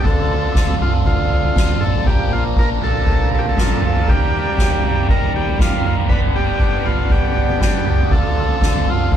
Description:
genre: psychedelic rock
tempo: 119 BPM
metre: 4/4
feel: straight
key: unclear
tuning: A4 = 441 Hz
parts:
  - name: combo organ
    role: melody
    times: 0.0-9.2 s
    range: F4 to B4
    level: -24 LUFS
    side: equal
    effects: none
  - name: pedal harmonium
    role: sustained chords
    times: 0.0-9.2 s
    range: F3 to B4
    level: -30 LUFS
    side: right 4 dB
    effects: none
  - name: cranked stack guitar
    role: riff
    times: 0.0-9.2 s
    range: Bb2 to B4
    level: -22 LUFS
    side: equal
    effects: overdrive, phaser
  - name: soft-mallet drum kit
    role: drums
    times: 0.0-9.2 s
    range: kick drum, snare drum, toms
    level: -17 LUFS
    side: right 1 dB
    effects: none
  - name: deep dub picked electric bass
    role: bass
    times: 0.1-9.2 s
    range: G1 to E2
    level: -22 LUFS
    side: left 1 dB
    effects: none
room: light reverb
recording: band playing live in one room, lossy compression artefacts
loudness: -14 LUFS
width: side -9 dB against mid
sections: 0.0-9.2 A section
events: none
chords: 0.1 Dm; 2.1 Bb; 4.1 Ebadd9; 6.1 G; 8.1 Dm

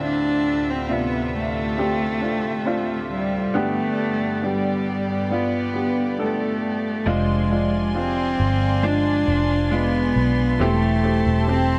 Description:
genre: pop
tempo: 68 BPM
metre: 4/4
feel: straight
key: unclear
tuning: A4 = 440 Hz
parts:
  - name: warm cello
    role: melody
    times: 0.0-11.8 s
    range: G3 to D4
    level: -25 LUFS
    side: equal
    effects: none
  - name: warm upright piano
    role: accompaniment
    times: 0.0-11.8 s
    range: D2 to A4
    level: -28 LUFS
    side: equal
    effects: none
  - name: warm studio string section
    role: sustained chords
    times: 0.0-11.8 s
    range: D2 to C6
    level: -32 LUFS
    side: equal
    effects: none
  - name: direct-recorded clean electric guitar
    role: arpeggios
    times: 7.1-11.8 s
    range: E3 to C5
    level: -32 LUFS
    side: equal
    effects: analog chorus
  - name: vintage muted fingered electric bass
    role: bass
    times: 7.1-11.8 s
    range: E1 to B1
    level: -24 LUFS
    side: equal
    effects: none
room: light reverb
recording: none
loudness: -22 LUFS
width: mono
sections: 0.0-7.1 A section; 7.1-11.8 B section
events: none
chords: 0.0 Dm7; 3.5 G; 7.1 Fm6; 10.6 Am7/E

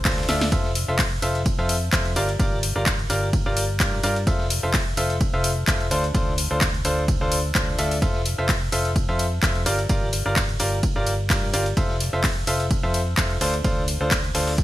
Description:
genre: piano house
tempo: 128 BPM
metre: 4/4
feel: swing 55% on 16ths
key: F major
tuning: A4 = 437 Hz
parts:
  - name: fingered electric bass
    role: bass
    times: 0.0-14.6 s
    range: F1 to G2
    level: -27 LUFS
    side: equal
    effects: sidechain pumping
  - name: bright baby grand piano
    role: riff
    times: 0.1-14.5 s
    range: D4 to E5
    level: -25 LUFS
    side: equal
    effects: sidechain pumping, ping-pong delay
  - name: breakbeat sampler-style drum kit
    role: drums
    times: 0.1-14.6 s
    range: hi-hat, snare drum, tambourine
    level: -34 LUFS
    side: right 1 dB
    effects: none
  - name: electronic kick drum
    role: drums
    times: 0.1-14.6 s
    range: none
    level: -24 LUFS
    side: equal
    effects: studio reverb
  - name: house drum kit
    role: drums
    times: 0.1-14.6 s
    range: handclaps, hi-hat, ride cymbal, snare drum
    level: -26 LUFS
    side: equal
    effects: studio reverb
room: light reverb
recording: bright 1980s-style digital production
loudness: -20 LUFS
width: side -15 dB against mid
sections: 0.0-14.6 A section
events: drum fill 0.3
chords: 0.0 Dm7; 0.5 Fmaj7; 2.2 Gm7; 4.3 Fmaj7; 5.9 Dm7; 8.0 Fmaj7; 9.7 Gm7; 11.8 Fmaj7; 13.4 Dm7

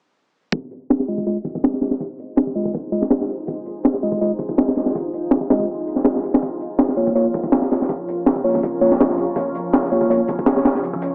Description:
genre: drum and bass, jungle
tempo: 163 BPM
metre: 4/4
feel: straight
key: F minor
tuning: A4 = 440 Hz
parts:
  - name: granular cloud pad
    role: sustained chords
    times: 2.1-11.1 s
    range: F3 to Db5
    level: -28 LUFS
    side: equal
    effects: built-in reverb
  - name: crunchy breakbeat drum kit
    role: drums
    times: 0.5-11.1 s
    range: hi-hat, kick drum, snare drum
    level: -22 LUFS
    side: equal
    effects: high-pass filter on kick, high-pass filter on hats, high-pass filter on snare, high-pass filter on room
  - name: mellow tine electric piano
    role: stabs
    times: 1.1-10.2 s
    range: Ab3 to Eb5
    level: -24 LUFS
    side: equal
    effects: vintage 12-bit sampler grit, low-pass filter, dub echo
room: light reverb, studio reverb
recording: low-pass filter, small speaker sound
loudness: -20 LUFS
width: mono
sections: 0.5-11.1 A section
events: filter sweep 0.5-11.1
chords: 0.5 Fm7; 6.4 Bbm/F

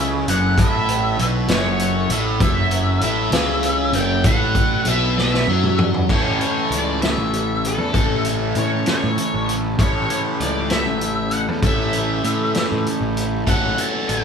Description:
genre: psychedelic rock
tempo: 65 BPM (dotted quarters)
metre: 6/8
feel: straight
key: A mixolydian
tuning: A4 = 438 Hz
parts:
  - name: octave-fuzz lead guitar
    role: melody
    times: 0.0-14.2 s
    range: A4 to A5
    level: -24 LUFS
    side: left 2 dB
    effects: wah, distortion
  - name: combo organ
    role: sustained chords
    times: 0.0-14.2 s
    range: C#3 to A4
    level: -30 LUFS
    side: right 2 dB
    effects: none
  - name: crunchy overdriven guitar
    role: riff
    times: 0.0-14.2 s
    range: F#2 to A4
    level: -21 LUFS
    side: equal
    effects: phaser
  - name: fuzz picked electric bass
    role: bass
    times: 0.0-14.2 s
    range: F#1 to A2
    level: -23 LUFS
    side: equal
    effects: overdrive
  - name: vintage drum kit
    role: drums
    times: 0.3-14.2 s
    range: crash cymbal, hi-hat, kick drum, snare drum, toms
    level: -22 LUFS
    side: equal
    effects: none
room: light reverb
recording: band playing live in one room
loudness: -17 LUFS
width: side -6 dB against mid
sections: 0.0-6.1 A section; 6.1-14.2 B section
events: drum fill 5.2-6.1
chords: 0.0 F#m7; 6.1 A; 13.5 F#m7/A

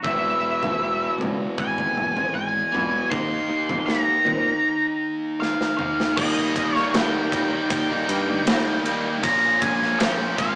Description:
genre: quiet-loud alternative rock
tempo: 78 BPM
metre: 4/4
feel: straight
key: unclear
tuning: A4 = 438 Hz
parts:
  - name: octave-fuzz lead guitar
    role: melody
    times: 0.0-10.6 s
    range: Eb5 to C6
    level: -23 LUFS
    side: equal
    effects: distortion
  - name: overdriven semi-hollow guitar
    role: riff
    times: 0.0-10.6 s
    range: E2 to Eb4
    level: -28 LUFS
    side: equal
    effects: none
  - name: thick fuzz guitar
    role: riff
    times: 0.0-10.6 s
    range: E2 to Eb4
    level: -30 LUFS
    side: equal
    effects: distortion
  - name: modern bright picked electric bass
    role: bass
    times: 0.0-10.6 s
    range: E1 to Bb2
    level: -29 LUFS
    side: equal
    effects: none
  - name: big rock drum kit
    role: drums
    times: 0.0-10.6 s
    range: crash cymbal, kick drum, ride cymbal, snare drum, toms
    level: -26 LUFS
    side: equal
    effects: none
  - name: heavy high-gain guitar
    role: riff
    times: 6.2-10.6 s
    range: Bb2 to Eb4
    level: -30 LUFS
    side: equal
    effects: distortion
room: moderate studio reverb, RT60 0.5 s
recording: rough rehearsal-room recording, warm saturation, small speaker sound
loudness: -20 LUFS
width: side -35 dB against mid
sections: 0.0-6.2 A section; 6.2-10.6 B section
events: drum fill 5.4-6.2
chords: 0.0 E; 3.1 Eb5; 6.2 Eb; 9.2 Bbm

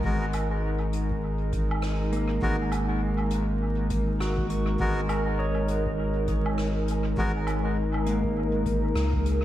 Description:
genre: ambient dub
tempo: 101 BPM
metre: 4/4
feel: swing 59% on 16ths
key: unclear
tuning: A4 = 440 Hz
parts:
  - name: warbly tape-like pad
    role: sustained chords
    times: 0.0-9.4 s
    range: G#3 to A#4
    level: -30 LUFS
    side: equal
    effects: chorus, built-in reverb
  - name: pedal steel guitar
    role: arpeggios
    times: 0.0-9.4 s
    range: A#3 to D#6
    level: -34 LUFS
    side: equal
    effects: diffuse ambient delay
  - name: melodica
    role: stabs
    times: 0.0-7.3 s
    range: G#3 to A#4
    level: -35 LUFS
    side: left 1 dB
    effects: dub echo
  - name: round analog bass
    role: bass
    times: 0.0-9.4 s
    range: G#1 to C#2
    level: -28 LUFS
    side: equal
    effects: none
  - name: electronic kick drum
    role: drums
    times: 0.0-9.2 s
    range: none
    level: -34 LUFS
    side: equal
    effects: none
  - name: jazz brush drum kit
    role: drums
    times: 0.3-9.4 s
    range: hi-hat, rim click, woodblock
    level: -38 LUFS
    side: right 1 dB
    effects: dub echo
room: moderate lush hall reverb, RT60 2.7 s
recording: dreamy mix soaked in reverb, vinyl crackle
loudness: -24 LUFS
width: side -13 dB against mid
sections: 0.0-9.4 A section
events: none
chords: 0.0 G#7sus2

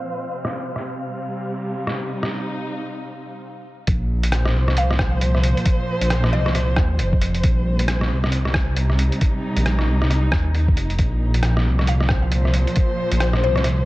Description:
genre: future garage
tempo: 135 BPM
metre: 4/4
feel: swing 61% on 16ths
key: unclear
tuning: A4 = 440 Hz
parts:
  - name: dark chamber string section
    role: sustained chords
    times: 0.0-13.9 s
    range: Bb2 to C5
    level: -26 LUFS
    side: right 1 dB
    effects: sidechain pumping, low-pass filter
  - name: wind-like tuned noise texture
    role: texture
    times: 0.0-3.4 s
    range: F5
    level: -35 LUFS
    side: left 1 dB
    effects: built-in reverb
  - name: lo-fi sampler-style drum kit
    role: drums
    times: 0.4-13.8 s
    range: hi-hat, rim click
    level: -25 LUFS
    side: equal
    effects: vintage 12-bit sampler grit
  - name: dark detuned saw bass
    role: bass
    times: 3.9-13.9 s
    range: F1 to Eb2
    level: -19 LUFS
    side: equal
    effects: sidechain pumping
  - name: electronic kick drum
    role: drums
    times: 3.9-12.9 s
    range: none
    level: -20 LUFS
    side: equal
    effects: vintage 12-bit sampler grit
  - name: mallet-like synth pluck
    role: melody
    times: 4.8-7.0, 11.9-13.6 s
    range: C5 to F5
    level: -29 LUFS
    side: left 4 dB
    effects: analog chorus, analog delay
room: little or no reverb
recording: cassette tape, low-pass filter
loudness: -18 LUFS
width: side -18 dB against mid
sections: 0.0-3.9 A section; 3.9-13.9 B section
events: filter sweep on string section 0.0-3.9; filter sweep 0.0-3.9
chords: 0.3 Cm; 3.9 Bbsus2; 7.4 Cm7/Bb; 11.0 Bbsus2

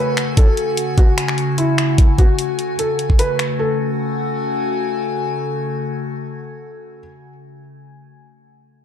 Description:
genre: heavy wobble dubstep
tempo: 149 BPM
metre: 4/4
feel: swing 53% on 16ths, half-time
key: F# minor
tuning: A4 = 440 Hz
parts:
  - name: felt-muted upright piano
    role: melody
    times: 0.0-7.0 s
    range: E4 to B4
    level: -23 LUFS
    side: equal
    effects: tape echo
  - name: evolving wavetable pad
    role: sustained chords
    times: 0.0-7.0 s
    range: C#3 to G#5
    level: -22 LUFS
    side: left 2 dB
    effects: phaser, built-in reverb, sidechain pumping
  - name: dubstep drum kit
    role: drums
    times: 0.2-3.5 s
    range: finger snaps, hi-hat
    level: -23 LUFS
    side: left 1 dB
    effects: none
  - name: electronic kick drum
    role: drums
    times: 0.4-3.2 s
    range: none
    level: -12 LUFS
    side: equal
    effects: none
room: moderate digital room reverb, RT60 1.1 s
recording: dark, warm production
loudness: -16 LUFS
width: side -9 dB against mid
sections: 0.0-3.6 A section; 3.6-6.8 B section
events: none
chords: 0.0 F#madd9

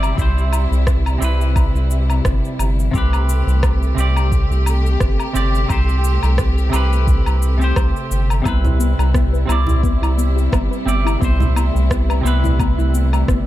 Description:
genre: sunset chillout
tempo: 87 BPM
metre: 4/4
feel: swing 56% on 16ths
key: C major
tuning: A4 = 440 Hz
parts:
  - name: semi-hollow electric guitar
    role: accompaniment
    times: 0.0-13.5 s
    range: C3 to D5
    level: -23 LUFS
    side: equal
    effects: auto-pan, digital delay
  - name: warm studio string section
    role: sustained chords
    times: 0.0-13.5 s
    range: C3 to G4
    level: -27 LUFS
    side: equal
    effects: none
  - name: round analog bass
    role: bass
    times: 0.0-13.4 s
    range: G1 to C2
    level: -16 LUFS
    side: equal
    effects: none
  - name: electronic woodblock, cabasa and rim click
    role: drums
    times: 0.0-13.4 s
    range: none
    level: -26 LUFS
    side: left 2 dB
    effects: overdrive
  - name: electronic kick drum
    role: drums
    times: 0.2-13.4 s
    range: none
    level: -19 LUFS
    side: equal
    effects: overdrive
  - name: soft round pluck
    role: arpeggios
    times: 8.5-13.5 s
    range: B3 to B4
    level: -25 LUFS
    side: left 4 dB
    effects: wide subtle chorus, digital delay
  - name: congas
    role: percussion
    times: 8.6-12.6 s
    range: none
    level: -23 LUFS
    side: right 2 dB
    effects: none
room: digital ambience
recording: none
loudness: -14 LUFS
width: side -14 dB against mid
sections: 0.0-13.5 A section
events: none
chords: 0.0 Cmaj7; 2.9 Am7; 8.5 Cmaj7

